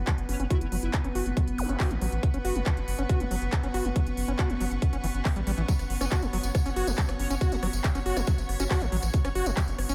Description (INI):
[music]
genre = psychedelic trance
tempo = 139 BPM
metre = 4/4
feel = straight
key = unclear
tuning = A4 = 440 Hz
[part]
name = evolving wavetable pad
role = sustained chords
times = 0.0-9.9 s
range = B3 to C#5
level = -38 LUFS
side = equal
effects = chorus, built-in reverb, vintage 12-bit sampler grit, sidechain pumping
[part]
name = round analog bass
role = bass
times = 0.0-9.9 s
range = F#1 to A1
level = -33 LUFS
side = equal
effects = none
[part]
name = rich studio string section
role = texture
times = 0.0-9.9 s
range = C#4 to C#6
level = -45 LUFS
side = equal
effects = sidechain pumping
[part]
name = overdriven acid bass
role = riff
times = 0.1-9.9 s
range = E3 to F#4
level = -36 LUFS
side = equal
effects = distortion, sidechain pumping, tape echo
[part]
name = electronic kick drum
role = drums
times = 0.1-9.7 s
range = none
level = -28 LUFS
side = equal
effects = none
[part]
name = techno drum kit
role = drums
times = 0.1-9.9 s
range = handclaps, hi-hat, rim click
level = -39 LUFS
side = equal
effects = overdrive
[part]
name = metallic wobble bass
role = second line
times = 0.3-1.0, 6.0-8.8 s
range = B3 to F#4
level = -43 LUFS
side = equal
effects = none
[part]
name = zap and riser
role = sound effects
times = 1.6-1.7, 9.9 s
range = none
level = -44 LUFS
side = equal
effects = none
[part]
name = tambourine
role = percussion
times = 5.7-9.9 s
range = none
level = -42 LUFS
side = equal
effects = none
[sound]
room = light reverb, digital ambience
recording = none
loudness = -28 LUFS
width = mono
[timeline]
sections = 0.0-9.9 A section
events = fade-in on string section 0.0-9.9; filter sweep on acid bass 0.0-9.9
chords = 0.0 F#5